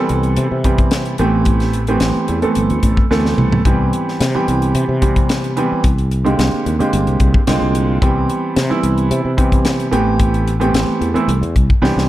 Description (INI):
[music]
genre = electric jazz fusion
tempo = 110 BPM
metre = 4/4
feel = straight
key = C major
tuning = A4 = 441 Hz
[part]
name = warm grand piano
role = accompaniment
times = 0.0-12.1 s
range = D3 to G5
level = -17 LUFS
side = right 2 dB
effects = none
[part]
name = sustaining fretless electric bass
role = bass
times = 0.1-12.1 s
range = G1 to C3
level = -18 LUFS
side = equal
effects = none
[part]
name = crisp fusion drum kit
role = drums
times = 0.1-12.1 s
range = hi-hat, kick drum, snare drum, toms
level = -17 LUFS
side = left 1 dB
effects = none
[sound]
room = light reverb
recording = dark, warm production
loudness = -13 LUFS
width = side -14 dB against mid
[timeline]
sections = 0.0-12.1 A section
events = drum fill 3.1-3.7, 11.8; grand piano fill 7.2-8.0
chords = 0.0 Cmaj7; 1.2 Am9; 3.7 Cmaj7; 5.8 Abmaj9#11/C; 8.0 Cmaj7; 9.9 Am9; 11.3 Cmaj9